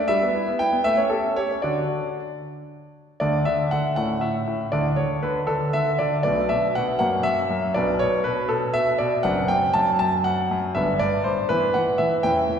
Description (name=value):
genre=classical-period piano sonatina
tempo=79 BPM (dotted quarters)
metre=6/8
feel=straight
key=D major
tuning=A4 = 442 Hz
part: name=clear concert grand piano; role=solo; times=0.0-12.6 s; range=F#1 to A5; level=-20 LUFS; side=equal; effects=none
room=wet concert hall reverb, RT60 2.0 s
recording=recorded in a church or concert hall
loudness=-20 LUFS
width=side -7 dB against mid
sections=0.0-3.2 A section; 3.2-12.6 B section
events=none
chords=0.1 Em/G; 0.8 A7; 1.6 D; 3.2 D5; 4.0 A; 4.7 D5; 6.2 Bm7; 7.0 F#7; 7.7 Bm; 9.2 D7/F#; 10.7 G; 11.5 E5